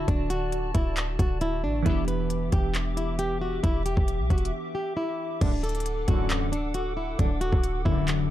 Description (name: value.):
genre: hip hop, trap.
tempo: 135 BPM.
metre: 4/4.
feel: half-time.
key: D major.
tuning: A4 = 440 Hz.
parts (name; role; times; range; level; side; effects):
flamenco guitar; melody; 0.0-8.1 s; D4 to B4; -31 LUFS; equal; ping-pong delay.
glassy digital keys; accompaniment; 0.0-5.4 s; D3 to A4; -34 LUFS; right 2 dB; chorus.
hollow soft pad; sustained chords; 0.0-8.3 s; F#4 to D6; -36 LUFS; equal; ensemble chorus.
clean 808-style bass; bass; 0.0-8.3 s; D1 to B1; -28 LUFS; equal; none.
trap drum kit; drums; 0.1-8.2 s; crash cymbal, handclaps, hi-hat, kick drum; -27 LUFS; equal; none.
mellow synth brass; stabs; 5.4-8.3 s; A1 to D3; -28 LUFS; left 3 dB; chorus.
room: digital ambience.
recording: dark, warm production.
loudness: -24 LUFS.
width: side -13 dB against mid.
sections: 0.0-5.4 A section; 5.4-8.3 B section.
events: break 4.5-5.4.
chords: 0.0 D; 1.9 Em7; 5.4 D.